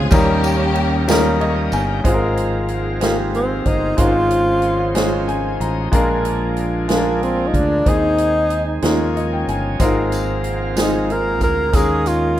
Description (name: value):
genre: slow gospel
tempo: 62 BPM (dotted quarters)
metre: 6/8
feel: straight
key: Ab major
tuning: A4 = 439 Hz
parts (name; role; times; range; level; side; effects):
- clear studio string section; melody; 0.0-1.4 s; Bb3 to Ab4; -22 LUFS; equal; none
- clear baby grand piano; accompaniment; 0.0-12.4 s; Ab2 to C6; -20 LUFS; left 2 dB; none
- bright tonewheel organ; sustained chords; 0.0-12.4 s; Eb3 to Ab5; -29 LUFS; right 2 dB; slow rotary speaker, overdrive
- fingered electric bass; bass; 0.0-12.4 s; G1 to Eb2; -22 LUFS; right 1 dB; none
- swinging big-band drum kit; drums; 0.1-12.4 s; hi-hat, kick drum, ride cymbal, snare drum; -20 LUFS; right 1 dB; none
- tambourine; percussion; 0.1-2.0, 9.8-12.4 s; none; -34 LUFS; right 4 dB; none
- warm French horn section; sustained chords; 2.0-12.4 s; Eb3 to C5; -29 LUFS; right 1 dB; none
- breathy tenor saxophone; melody; 3.0-12.4 s; Bb3 to Bb4; -19 LUFS; equal; none
room: light reverb, small room ambience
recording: rough home demo mix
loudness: -15 LUFS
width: side -12 dB against mid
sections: 0.0-2.1 A section; 2.1-12.4 B section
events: grand piano fill 1.1-2.1, 5.0-5.9, 8.8-9.8; tonewheel organ fill 1.1-2.1, 5.0-5.9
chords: 0.1 Eb7; 2.1 Ab69; 4.0 Dbmaj9/Ab; 5.9 Bb7; 7.9 Ab/Eb; 8.8 Eb9sus4; 9.8 Ab69; 11.7 Eb7sus4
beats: | 0.12 1.08 | 2.05 3.02 | 3.99 4.96 | 5.92 6.89 | 7.86 8.83 | 9.80 10.77 | 11.74